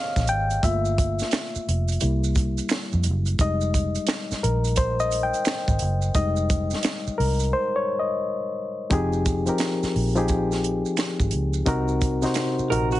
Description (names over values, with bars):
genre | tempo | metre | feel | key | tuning
R&B, neo-soul | 87 BPM | 4/4 | swing 63% on 16ths | F minor | A4 = 440 Hz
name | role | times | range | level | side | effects
reed electric piano | accompaniment | 0.0-13.0 s | C3 to G5 | -24 LUFS | left 2 dB | plate reverb
vintage muted fingered electric bass | bass | 0.2-13.0 s | F1 to F2 | -25 LUFS | right 1 dB | none
compact cocktail drum kit | drums | 0.2-13.0 s | finger snaps, hi-hat, kick drum, snare drum | -26 LUFS | right 1 dB | none
maracas and finger snaps | percussion | 0.2-13.0 s | none | -35 LUFS | right 11 dB | none
electric guitar through a small old amp | second line | 12.7-13.0 s | Gb4 to Bb4 | -26 LUFS | right 9 dB | none
room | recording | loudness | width
light reverb | heavily compressed radio sound, nothing above 10.7 kHz | -21 LUFS | side -15 dB against mid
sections
0.0-8.9 A section; 8.9-13.0 B section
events
reed electric piano solo 0.0-8.9; drums muted 7.5-8.9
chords
0.0 Abmaj9; 0.6 Gm9; 2.0 C7; 3.4 Fm9; 11.7 Cm7b5